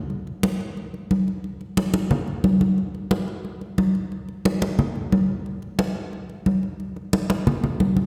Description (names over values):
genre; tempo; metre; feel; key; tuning
latin; 179 BPM; 4/4; straight; none; none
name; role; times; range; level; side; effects
congas; percussion; 0.1-8.1 s; none; -24 LUFS; equal; none
room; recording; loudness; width
wet concert hall reverb, RT60 1.9 s; recorded in a church or concert hall; -24 LUFS; mono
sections
0.0-6.8 A section; 6.8-8.1 B section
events
none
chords
none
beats
| 0.10 0.43 0.77 1.10 | 1.44 1.77 2.11 2.44 | 2.77 3.11 3.44 3.78 | 4.12 4.45 4.78 5.12 | 5.45 5.79 6.12 6.46 | 6.79 7.13 7.46 7.80